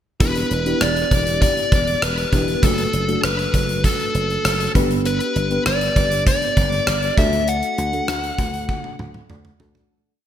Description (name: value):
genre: 1980s-style pop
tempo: 99 BPM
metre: 4/4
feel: straight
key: unclear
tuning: A4 = 436 Hz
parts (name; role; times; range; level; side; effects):
- smooth overdriven lead guitar; melody; 0.2-9.3 s; A4 to F#5; -22 LUFS; left 1 dB; none
- mellow FM electric piano; accompaniment; 0.2-9.9 s; A3 to A5; -25 LUFS; left 1 dB; chorus
- dry thumbed slap bass; bass; 0.2-9.8 s; E1 to D2; -24 LUFS; right 1 dB; none
- gated 80s drum kit; drums; 0.2-9.9 s; hi-hat, kick drum, rim click, toms; -21 LUFS; right 1 dB; gated reverb
room: moderate lush hall reverb, RT60 2.6 s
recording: bright 1980s-style digital production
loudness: -17 LUFS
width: side -10 dB against mid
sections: 0.2-9.9 verse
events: fade-out 7.5-9.9; drum fill 8.7-9.9; FM electric piano fill 9.0-9.9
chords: 0.2 Em7; 2.6 D/F#; 4.8 G; 7.2 D